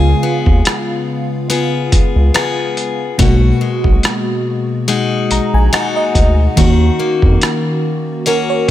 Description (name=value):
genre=contemporary R&B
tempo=71 BPM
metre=4/4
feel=swing 54% on 16ths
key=unclear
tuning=A4 = 440 Hz
part: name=FM electric piano with soft pad layer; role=accompaniment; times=0.0-8.7 s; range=Cb3 to Bb5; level=-17 LUFS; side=right 1 dB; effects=chorus
part: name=picked plugged-in steel-string acoustic guitar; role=arpeggios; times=0.0-8.7 s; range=Cb3 to Ab4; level=-18 LUFS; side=left 6 dB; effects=ping-pong delay
part: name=round analog bass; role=bass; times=0.0-8.7 s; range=Bb1 to F2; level=-12 LUFS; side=equal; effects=none
part: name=dusty soul sampler-style drum kit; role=drums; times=0.5-8.7 s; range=hi-hat, kick drum, rim click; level=-15 LUFS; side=equal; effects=none
room=light reverb, digital ambience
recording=none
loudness=-12 LUFS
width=side -13 dB against mid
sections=0.0-8.7 A section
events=FM electric piano fill 4.9-6.6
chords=0.0 Db7; 3.2 Abm7/Cb; 6.6 Ebm7